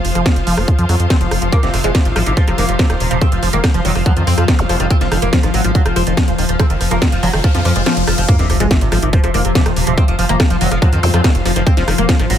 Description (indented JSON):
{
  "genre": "psychedelic trance",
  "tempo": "142 BPM",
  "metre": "4/4",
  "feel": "straight",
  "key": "unclear",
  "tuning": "A4 = 440 Hz",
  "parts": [
    { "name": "evolving wavetable pad", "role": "sustained chords", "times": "0.0-12.4 s", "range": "F3", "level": "-23 LUFS", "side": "left 4 dB", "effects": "chorus, built-in reverb, sidechain pumping" },
    { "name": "round analog bass", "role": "bass", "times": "0.0-12.4 s", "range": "Eb1 to F2", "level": "-18 LUFS", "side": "equal", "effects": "none" },
    { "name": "drum and bass drum kit", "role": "drums", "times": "0.0-12.4 s", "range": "hi-hat, rim click, snare drum", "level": "-21 LUFS", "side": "equal", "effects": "overdrive" },
    { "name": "rich symphonic string section", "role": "texture", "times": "0.0-12.4 s", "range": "F4 to F5", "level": "-26 LUFS", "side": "left 2 dB", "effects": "sidechain pumping" },
    { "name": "liquid acid bass", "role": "riff", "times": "0.2-12.3 s", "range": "Eb3 to C4", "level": "-23 LUFS", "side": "moving between left 5 dB and right 4 dB", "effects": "phaser, auto-pan, sidechain pumping, tape echo" },
    { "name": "electronic kick drum", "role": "drums", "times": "0.3-12.2 s", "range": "none", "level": "-13 LUFS", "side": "equal", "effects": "overdrive" },
    { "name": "oud", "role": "melody", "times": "1.5-12.4 s", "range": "C3 to C4", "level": "-20 LUFS", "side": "right 1 dB", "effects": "phaser, sidechain pumping, tape echo" },
    { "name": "zap, riser and sub drop", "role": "sound effects", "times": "4.6-11.1 s", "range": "none", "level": "-24 LUFS", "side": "equal", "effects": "none" }
  ],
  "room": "little or no reverb",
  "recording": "none",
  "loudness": "-12 LUFS",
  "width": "side -10 dB against mid",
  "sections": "0.0-8.3 A section; 8.3-12.4 B section",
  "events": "riser 4.9-8.3; kick drops out 7.9-8.3; drop 8.3-12.4; impact 8.3-10.0",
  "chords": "0.0 F5"
}